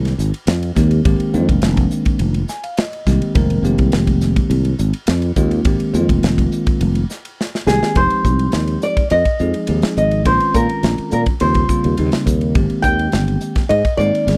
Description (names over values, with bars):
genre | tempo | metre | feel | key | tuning
electric jazz fusion | 104 BPM | 4/4 | straight | F minor | A4 = 440 Hz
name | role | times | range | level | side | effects
bell-like tine electric piano | accompaniment | 0.0-14.4 s | Db3 to Ab5 | -22 LUFS | equal | none
sustaining fretless electric bass | bass | 0.0-14.4 s | F1 to Bb2 | -20 LUFS | equal | lush chorus
modern studio drum kit | drums | 0.1-14.4 s | hi-hat, kick drum, ride cymbal, snare drum | -22 LUFS | equal | none
flamenco guitar | melody | 7.7-14.4 s | Ab4 to G5 | -21 LUFS | equal | slapback echo
room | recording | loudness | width
little or no reverb | dry, close 1970s-style studio recording | -17 LUFS | mono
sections
0.0-8.0 A section; 8.0-14.4 B section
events
tine electric piano fill 2.2-3.4; drum fill 7.4-8.0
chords
0.0 Fm11; 8.0 Fm9; 10.3 Bbm11; 11.4 Eb13; 12.6 Abmaj9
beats
0.49 | 1.06 1.64 2.21 2.79 | 3.36 3.94 4.51 5.08 | 5.66 6.23 6.81 7.38 | 7.96 8.53 9.11 9.68 | 10.25 10.83 11.40 11.98 | 12.55 13.13 13.70 14.27